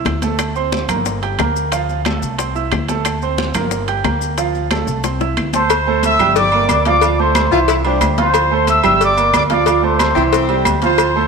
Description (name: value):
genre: latin, salsa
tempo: 181 BPM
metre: 4/4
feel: straight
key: D minor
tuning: A4 = 440 Hz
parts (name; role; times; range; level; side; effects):
- bright grand piano; accompaniment; 0.0-11.3 s; E3 to G6; -19 LUFS; right 10 dB; none
- upright bass; bass; 0.1-11.3 s; G1 to D2; -21 LUFS; left 2 dB; none
- bongos and cowbell; percussion; 0.1-11.2 s; none; -24 LUFS; left 15 dB; none
- claves; percussion; 0.1-11.2 s; none; -27 LUFS; left 14 dB; none
- congas; percussion; 0.1-11.3 s; none; -25 LUFS; left 3 dB; none
- maracas; percussion; 0.1-11.2 s; none; -33 LUFS; left 15 dB; none
- timbales and agogo bells; percussion; 0.1-11.2 s; none; -24 LUFS; right 7 dB; none
- clear trumpet section; melody; 5.5-11.3 s; C5 to E6; -16 LUFS; left 1 dB; none
- clear saxophone section; second line; 7.5-8.1, 10.2-10.7 s; C4 to F4; -21 LUFS; left 10 dB; none
room: moderate plate reverb, RT60 3.1 s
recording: 1960s-style stereo with parts hard left and right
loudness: -13 LUFS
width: side -5 dB against mid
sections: 0.0-5.7 A section; 5.7-11.3 B section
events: drum fill 5.0-5.7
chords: 0.4 D5; 1.1 Gm; 1.7 Dm7; 2.4 Cadd9; 3.1 D5; 3.7 Gm; 4.4 Dm7; 5.0 Cadd9; 5.7 D5; 6.4 Gm; 7.0 Dm7; 7.7 Cadd9; 8.3 Dm7; 9.0 Gm; 9.7 Dm7; 10.3 Cadd9